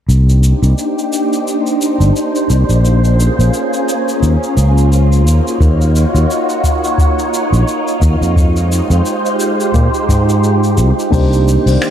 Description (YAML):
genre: sunset chillout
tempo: 87 BPM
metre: 4/4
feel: swing 57% on 16ths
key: C phrygian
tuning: A4 = 439 Hz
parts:
  - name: soft string machine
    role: sustained chords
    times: 0.3-11.9 s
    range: Eb3 to D5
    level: -16 LUFS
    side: equal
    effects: phaser, ensemble chorus
  - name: sustaining fretless electric bass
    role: bass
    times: 0.1-11.8 s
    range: G1 to Bb2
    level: -11 LUFS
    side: equal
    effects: none
  - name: vintage brush drum kit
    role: drums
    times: 0.1-11.9 s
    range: finger snaps, hi-hat, shaker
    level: -25 LUFS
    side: left 1 dB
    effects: none
  - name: electronic kick drum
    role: drums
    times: 5.6-11.3 s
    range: none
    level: -13 LUFS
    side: equal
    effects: none
  - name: tine electric piano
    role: accompaniment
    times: 11.1-11.9 s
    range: Bb3 to C5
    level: -14 LUFS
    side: equal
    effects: auto-pan, low-pass filter, ping-pong delay
room: moderate concert hall reverb, RT60 2.1 s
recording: dark, warm production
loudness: -10 LUFS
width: side -10 dB against mid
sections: 0.1-11.1 A section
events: filter sweep on fretless electric bass 0.1-11.1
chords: 0.1 Cm9; 2.8 Bbm9; 5.3 Ebm9; 8.4 Fm9; 11.1 Cm9